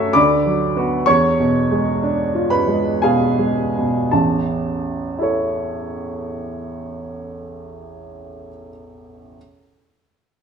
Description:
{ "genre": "classical, romantic character piece for solo piano", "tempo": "52-68 BPM", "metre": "3/4", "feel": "rubato", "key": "A major", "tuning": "A4 = 440 Hz", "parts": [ { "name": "clear upright piano", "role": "solo", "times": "0.0-9.4 s", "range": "A1 to E6", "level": "-17 LUFS", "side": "right 1 dB", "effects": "none" } ], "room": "wet stone room reverb, RT60 1.2 s", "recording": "dark, warm production", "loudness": "-16 LUFS", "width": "side -6 dB against mid", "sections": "0.0-4.1 A section; 4.1-7.2 B section", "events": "slowing down 0.0-4.1", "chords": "0.1 Bm/D; 1.1 E7b9; 4.1 A" }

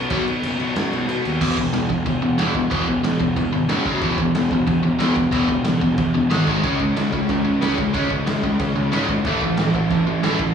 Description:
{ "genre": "punk rock", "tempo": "184 BPM", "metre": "4/4", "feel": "straight", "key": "E major", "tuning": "A4 = 442 Hz", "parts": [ { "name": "sludgy distorted guitar", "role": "riff", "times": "0.0-1.4, 6.6-10.5 s", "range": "A2 to C#4", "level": "-26 LUFS", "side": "equal", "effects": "overdrive, slapback echo" }, { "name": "fuzz picked electric bass", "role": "bass", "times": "0.0-10.5 s", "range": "E1 to C#3", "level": "-25 LUFS", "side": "equal", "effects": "overdrive" }, { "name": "biting overdriven guitar", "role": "riff", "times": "0.1-10.5 s", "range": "E2 to C#4", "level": "-20 LUFS", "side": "equal", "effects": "slapback echo" }, { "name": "raw garage drum kit", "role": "drums", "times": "0.1-10.5 s", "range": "crash cymbal, kick drum, snare drum", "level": "-25 LUFS", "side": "equal", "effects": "none" } ], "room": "small room ambience", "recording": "live gig heard through the venue's PA, club reverb, studio reverb", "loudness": "-18 LUFS", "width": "side -7 dB against mid", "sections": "0.0-1.4 A section; 1.4-10.5 B section", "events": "half time 0.0-1.4", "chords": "0.0 B5; 1.4 E5; 3.7 F#5; 4.0 E5; 6.3 G#5; 6.6 C#5; 9.2 A5" }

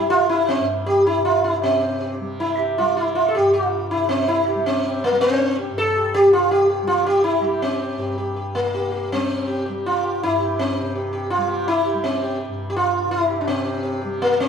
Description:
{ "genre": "indian classical", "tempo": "162 BPM", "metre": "4/4", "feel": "straight", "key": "G raga bageshri", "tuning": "A4 = 439 Hz", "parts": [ { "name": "sitar", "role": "melody", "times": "0.0-14.5 s", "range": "Bb3 to A4", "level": "-18 LUFS", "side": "equal", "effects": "none" }, { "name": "tanpura", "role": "drone", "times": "0.0-14.5 s", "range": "G2 to G3", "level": "-30 LUFS", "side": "equal", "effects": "none" } ], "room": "moderate recital hall reverb, RT60 1.5 s", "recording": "recorded in a church or concert hall", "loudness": "-18 LUFS", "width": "side -7 dB against mid", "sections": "0.0-1.6 A section; 1.6-13.5 B section", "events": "speeding up 0.0-14.5", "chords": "none" }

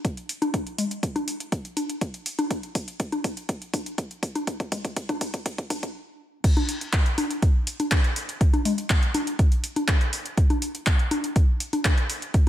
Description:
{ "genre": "house", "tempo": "122 BPM", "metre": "4/4", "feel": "straight", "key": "none", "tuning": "none", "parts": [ { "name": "deep house drum kit", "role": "drums", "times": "0.0-12.5 s", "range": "crash cymbal, handclaps, hi-hat", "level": "-30 LUFS", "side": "equal", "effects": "none" }, { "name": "electronic kick drum", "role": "drums", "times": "0.0-12.4 s", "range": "none", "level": "-22 LUFS", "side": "equal", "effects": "none" }, { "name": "congas", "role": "percussion", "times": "0.4-12.5 s", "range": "none", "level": "-28 LUFS", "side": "left 2 dB", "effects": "sidechain pumping on perc" } ], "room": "light reverb, digital ambience", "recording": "high-pass filter", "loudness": "-23 LUFS", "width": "side -13 dB against mid", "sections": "0.0-6.4 A section; 6.4-12.5 B section", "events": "build-up 0.0-6.4; drum fill 0.0-5.9; stop 5.9-6.4; drop 6.4-12.5", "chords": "none" }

